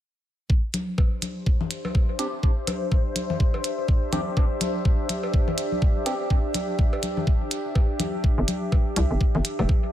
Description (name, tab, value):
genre	minimal techno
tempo	124 BPM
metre	4/4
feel	swing 59% on 16ths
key	unclear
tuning	A4 = 442 Hz
part	electronic kick drum	drums	0.5-9.8 s	none	-21 LUFS	equal	none
part	warbly tape-like pad	texture	0.5-9.9 s	D4 to E5	-30 LUFS	equal	chorus, built-in reverb, sidechain pumping
part	electronic hi-hat	drums	0.7-9.6 s	none	-31 LUFS	right 1 dB	none
part	congas and cowbell	percussion	0.7-9.7 s	none	-31 LUFS	left 3 dB	analog delay
part	percussive organ stab	stabs	2.2-6.1 s	C4 to G4	-32 LUFS	right 1 dB	analog chorus, cassette tape, analog delay
part	hollow knocking FM bass	bass	8.4-9.7 s	F1 to C2	-22 LUFS	equal	sidechain pumping
room	digital ambience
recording	none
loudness	-22 LUFS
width	side -12 dB against mid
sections	0.5-9.9 A section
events	none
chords	0.5 Gsus4